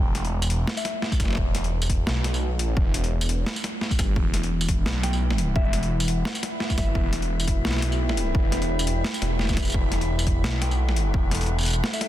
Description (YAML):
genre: half-time drum and bass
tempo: 172 BPM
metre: 4/4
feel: swing 55% on 16ths, half-time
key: E minor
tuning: A4 = 440 Hz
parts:
  - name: phased detuned saw bass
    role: bass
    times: 0.0-11.8 s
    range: E1 to B1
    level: -24 LUFS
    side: equal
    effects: phaser
  - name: boom bap sampler-style drum kit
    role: drums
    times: 0.1-12.1 s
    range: hi-hat, snare drum, tambourine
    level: -28 LUFS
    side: equal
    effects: overdrive
  - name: soft synth bell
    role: melody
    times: 0.8-0.9, 5.0-6.9, 10.6-12.1 s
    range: E5 to G5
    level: -37 LUFS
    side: left 2 dB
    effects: chorus, phaser, digital delay
  - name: electronic kick drum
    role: drums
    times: 1.1-11.2 s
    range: none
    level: -24 LUFS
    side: equal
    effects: none
  - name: deep dark ambient pad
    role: sustained chords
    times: 5.4-12.1 s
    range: E4 to G5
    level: -34 LUFS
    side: left 2 dB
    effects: chorus, built-in reverb, sidechain pumping
  - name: metallic inharmonic drone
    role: texture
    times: 4.6-12.1 s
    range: E4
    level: -36 LUFS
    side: left 1 dB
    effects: chorus, built-in reverb
room: little or no reverb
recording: dense, heavily limited modern master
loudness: -22 LUFS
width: side -13 dB against mid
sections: 0.0-12.1 A section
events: none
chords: 0.0 Emadd9